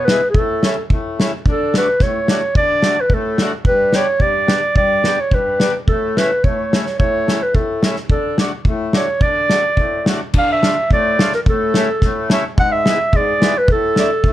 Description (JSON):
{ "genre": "alpine folk, alpine dance band", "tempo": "108 BPM", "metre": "2/4", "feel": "straight", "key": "D major, D harmonic minor from 10.4 s", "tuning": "A4 = 440 Hz", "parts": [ { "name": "mellow clarinet", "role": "melody", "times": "0.0-14.3 s", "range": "A4 to F#5", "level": "-17 LUFS", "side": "right 1 dB", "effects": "none" }, { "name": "accordion", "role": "accompaniment", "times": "0.0-14.3 s", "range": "G2 to G4", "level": "-22 LUFS", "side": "left 3 dB", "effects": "none" }, { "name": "loose indie drum kit", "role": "drums", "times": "0.1-14.3 s", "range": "crash cymbal, kick drum, snare drum", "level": "-17 LUFS", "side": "equal", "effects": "none" } ], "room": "light reverb", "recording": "dark, warm production", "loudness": "-14 LUFS", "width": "side -13 dB against mid", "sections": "0.0-1.5 A section; 1.5-10.4 B section; 10.4-14.3 C section", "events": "none", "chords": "0.3 A; 1.5 D; 3.7 G; 5.9 A; 8.1 D; 10.4 Dm; 11.5 A; 12.6 E/G#; 13.7 Asus4" }